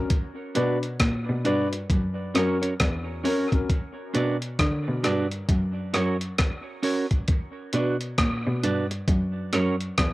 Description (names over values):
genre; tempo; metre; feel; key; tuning
dub reggae; 67 BPM; 4/4; swing 62% on 16ths; B harmonic minor; A4 = 440 Hz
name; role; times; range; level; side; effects
dark upright piano; stabs; 0.0-3.7 s; C#4 to B4; -31 LUFS; left 4 dB; dub echo
breakbeat sampler-style drum kit; drums; 0.1-10.1 s; hi-hat, kick drum, rim click; -25 LUFS; equal; none
clean electric guitar; accompaniment; 0.5-9.8 s; C#4 to D5; -29 LUFS; right 3 dB; dub echo
dark cello; bass; 0.6-10.1 s; E2 to D3; -27 LUFS; equal; tube saturation
room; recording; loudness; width
light reverb, small room ambience; home recording on cassette; -23 LUFS; side -18 dB against mid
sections
0.0-10.1 A section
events
none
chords
0.1 Bm; 1.9 F#; 3.7 Bm; 5.5 F#; 7.3 Bm; 9.1 F#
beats
| 0.10 1.00 1.90 2.80 | 3.69 4.59 5.49 6.39 | 7.29 8.18 9.08 9.98